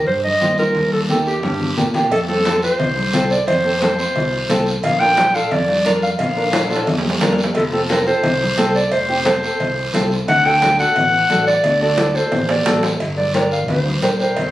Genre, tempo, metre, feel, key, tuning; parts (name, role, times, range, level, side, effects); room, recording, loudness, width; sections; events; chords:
latin, cumbia; 176 BPM; 4/4; straight; A4 = 440 Hz
warm clarinet; melody; 0.0-14.5 s; G4 to G5; -17 LUFS; equal
modern bright fingered electric bass; bass; 0.0-14.5 s; F1 to Bb2; -24 LUFS; equal
congas; percussion; 0.1-14.5 s; -23 LUFS; left 2 dB
guiro; percussion; 0.1-14.5 s; -28 LUFS; right 1 dB
nylon-string guitar; accompaniment; 0.4-14.4 s; Bb3 to C5; -21 LUFS; equal
cowbell and timbales; percussion; 2.1-14.5 s; -25 LUFS; right 3 dB
moderate large studio reverb, RT60 1.0 s; recorded on a phone in the room, studio reverb; -14 LUFS; side -15 dB against mid
0.0-2.1 A section; 2.1-13.0 B section; 13.0-14.5 C section
drum fill 0.8-2.1, 6.5-7.6, 12.0-13.0; clarinet solo 13.0-14.5
0.0 Cm; 0.8 Eb; 1.4 Gm; 2.1 F; 4.8 Bb; 7.6 F; 10.3 D; 13.0 Gm